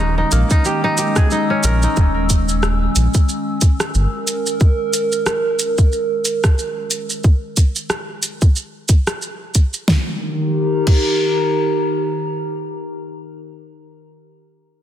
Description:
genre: organic downtempo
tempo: 91 BPM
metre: 4/4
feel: swing 57% on 16ths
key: unclear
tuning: A4 = 440 Hz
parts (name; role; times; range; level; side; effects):
- warbly tape-like pad; sustained chords; 0.0-13.3 s; Eb3 to Fb6; -20 LUFS; equal; chorus, built-in reverb, sidechain pumping
- kora; arpeggios; 0.0-3.5 s; Bb3 to Bb4; -20 LUFS; equal; digital delay
- round analog bass; bass; 0.0-4.1 s; Eb1 to Bb1; -17 LUFS; equal; sidechain pumping
- deep house drum kit; drums; 0.3-11.1 s; crash cymbal, hi-hat, rim click, shaker, snare drum; -21 LUFS; right 1 dB; soft clipping on snare
- electronic kick drum; drums; 0.5-11.1 s; none; -13 LUFS; equal; none
room: moderate lush hall reverb, RT60 2.3 s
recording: dense, heavily limited modern master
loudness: -15 LUFS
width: side -11 dB against mid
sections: 0.0-9.9 A section; 9.9-12.5 B section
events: none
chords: 0.0 Dbm/Eb; 9.9 Eb

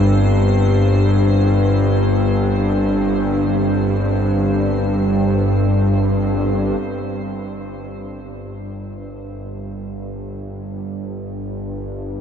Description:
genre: dark ambient drone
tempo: free time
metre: none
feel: none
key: unclear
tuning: A4 = 440 Hz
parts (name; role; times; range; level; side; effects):
- bowed-like drone; drone; 0.0-12.2 s; G1 to G2; -17 LUFS; equal; built-in reverb
- icy glass pad; texture; 0.0-6.9 s; C4 to C5; -30 LUFS; left 1 dB; chorus, built-in reverb
room: wet huge ambient reverb, RT60 7.4 s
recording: dark, warm production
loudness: -15 LUFS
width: side -8 dB against mid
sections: 0.0-6.8 A section; 6.8-12.2 B section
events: fade-in on synth drone 6.8-12.2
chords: 0.0 Gmadd11; 6.8 N.C.

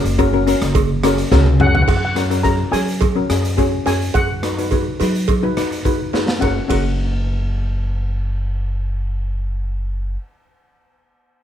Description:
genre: calypso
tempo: 106 BPM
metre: 4/4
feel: straight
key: F# major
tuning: A4 = 441 Hz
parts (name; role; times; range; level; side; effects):
- steel pan; melody; 0.0-10.1 s; C#5 to A#5; -23 LUFS; equal; none
- steel pan; accompaniment; 0.0-10.2 s; C#4 to B4; -20 LUFS; left 5 dB; none
- upright bass; bass; 0.0-10.1 s; F#1 to F#3; -20 LUFS; equal; none
- raw garage drum kit; drums; 0.1-6.9 s; crash cymbal, hi-hat, kick drum, ride cymbal, rim click, snare drum, toms; -21 LUFS; equal; none
- cowbell; percussion; 0.2-6.9 s; none; -24 LUFS; right 9 dB; none
room: light reverb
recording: none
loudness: -16 LUFS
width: side -10 dB against mid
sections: 0.0-1.9 A section; 1.9-6.4 B section; 6.4-8.7 C section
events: drum fill 1.3-1.9, 6.1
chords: 0.0 F#add9; 4.1 B/F#; 6.4 F#

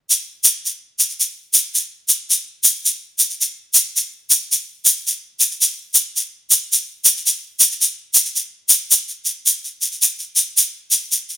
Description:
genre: folk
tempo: 109 BPM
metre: 4/4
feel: swing 61% on 8ths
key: none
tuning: none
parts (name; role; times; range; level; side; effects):
- egg shaker; percussion; 0.1-11.4 s; none; -13 LUFS; equal; none
room: light reverb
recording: none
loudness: -14 LUFS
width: side -14 dB against mid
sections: 0.0-8.9 A section; 8.9-11.4 B section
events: none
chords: none

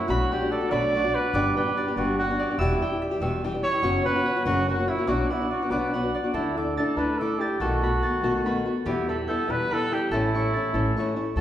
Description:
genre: mexican folk, mariachi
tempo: 96 BPM (dotted quarters)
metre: 6/8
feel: straight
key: B minor, D major from 6.3 s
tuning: A4 = 439 Hz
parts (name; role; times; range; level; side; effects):
- mellow trumpet; melody; 0.0-11.4 s; E4 to D5; -27 LUFS; right 1 dB; none
- nylon-string guitar; accompaniment; 0.0-11.4 s; E2 to G4; -26 LUFS; left 2 dB; none
- concert harp; arpeggios; 0.0-11.4 s; G4 to A6; -30 LUFS; right 1 dB; none
- upright bass; bass; 0.1-11.4 s; E1 to E2; -31 LUFS; equal; none
room: wet recital hall reverb, RT60 1.5 s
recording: recorded in a church or concert hall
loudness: -22 LUFS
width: side -11 dB against mid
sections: 0.0-6.3 A section; 6.3-11.4 B section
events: none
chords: 0.1 Bm7; 1.3 G; 2.6 Em; 3.8 F#sus4; 4.4 F#; 5.1 Bm; 6.3 Dsus2; 7.6 B7; 8.9 Em; 10.1 A

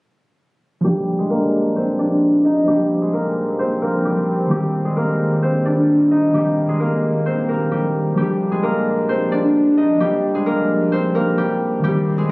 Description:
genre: hip hop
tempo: 131 BPM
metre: 4/4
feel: half-time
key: G phrygian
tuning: A4 = 440 Hz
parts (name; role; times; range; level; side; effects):
- concert harp; melody; 0.8-12.3 s; G3 to Eb5; -17 LUFS; equal; low-pass filter
- muted felt-like synth keys; accompaniment; 0.8-12.3 s; Eb3 to G4; -22 LUFS; equal; chorus, low-pass filter
- warm analog pad; sustained chords; 0.8-12.3 s; Bb2 to D4; -26 LUFS; equal; chorus, low-pass filter
room: light reverb, small room ambience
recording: recorded on a phone in the room, club reverb, compression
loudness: -16 LUFS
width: side -26 dB against mid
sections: 0.8-12.3 A section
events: filter sweep 0.8-12.3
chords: 0.8 Gm7; 4.5 Cm7; 8.2 Gm7

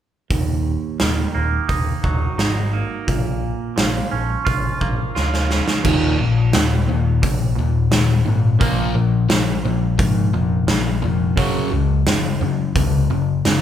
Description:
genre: quiet-loud alternative rock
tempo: 87 BPM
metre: 4/4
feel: straight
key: Eb minor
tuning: A4 = 440 Hz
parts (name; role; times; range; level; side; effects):
- twangy electric guitar; arpeggios; 0.3-13.6 s; Eb2 to F4; -26 LUFS; right 6 dB; phaser
- overdriven picked electric bass; bass; 0.3-13.6 s; Eb1 to Ab2; -21 LUFS; equal; none
- big rock drum kit; drums; 0.3-13.6 s; crash cymbal, hi-hat, kick drum, snare drum; -21 LUFS; right 1 dB; none
- sludgy distorted guitar; riff; 5.8-13.6 s; Eb2 to Bb3; -20 LUFS; left 6 dB; overdrive
room: moderate large studio reverb, RT60 1.2 s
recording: band playing live in one room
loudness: -16 LUFS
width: side -10 dB against mid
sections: 0.3-5.8 A section; 5.8-13.6 B section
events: drum fill 5.2-5.8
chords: 0.3 Ebm; 3.1 Bbm; 5.8 Eb5; 8.6 Bb5; 11.4 Gb5

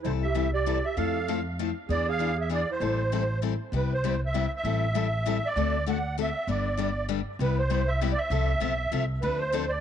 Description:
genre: acoustic string swing (jazz manouche)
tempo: 196 BPM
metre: 3/4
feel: swing 59% on 8ths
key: A minor, C major from 3.7 s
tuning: A4 = 439 Hz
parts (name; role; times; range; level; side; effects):
- musette accordion; melody; 0.0-9.8 s; B4 to F#5; -29 LUFS; right 2 dB; tape echo
- mellow clarinet; second line; 0.0-3.4 s; E4 to A4; -33 LUFS; right 15 dB; none
- picked steel-string acoustic guitar; accompaniment; 0.0-9.6 s; C3 to A4; -31 LUFS; left 14 dB; none
- upright bass; bass; 0.0-9.8 s; G1 to F2; -29 LUFS; equal; none
room: light reverb, studio ambience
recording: 1960s-style stereo with parts hard left and right, nothing above 11.0 kHz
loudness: -25 LUFS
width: side -9 dB against mid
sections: 0.0-3.7 A section; 3.7-9.8 B section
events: none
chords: 0.1 C6; 1.0 Fmaj7; 1.9 E7; 2.8 Am7; 3.7 Cmaj7; 4.6 Am7; 5.6 D7; 6.5 G; 7.4 Cmaj7; 8.3 F; 9.2 Dm7

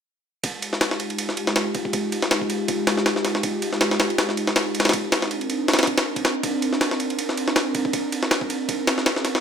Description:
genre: drum and bass, jungle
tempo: 160 BPM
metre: 4/4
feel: swing 55% on 16ths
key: F minor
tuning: A4 = 440 Hz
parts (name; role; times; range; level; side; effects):
- airy breathy pad; sustained chords; 0.4-9.4 s; Ab3 to Bb4; -25 LUFS; right 1 dB; chorus, vintage 12-bit sampler grit
- jungle sampler-style drum kit; drums; 0.4-9.4 s; kick drum, ride cymbal, snare drum; -22 LUFS; equal; high-pass filter on cymbals, studio reverb, high-pass filter on kick, high-pass filter on snare
room: moderate plate reverb, RT60 1.8 s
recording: none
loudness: -20 LUFS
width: side -8 dB against mid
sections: 0.4-9.4 A section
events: none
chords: 0.4 Fm9; 4.9 Cm9; 8.7 Bbm9

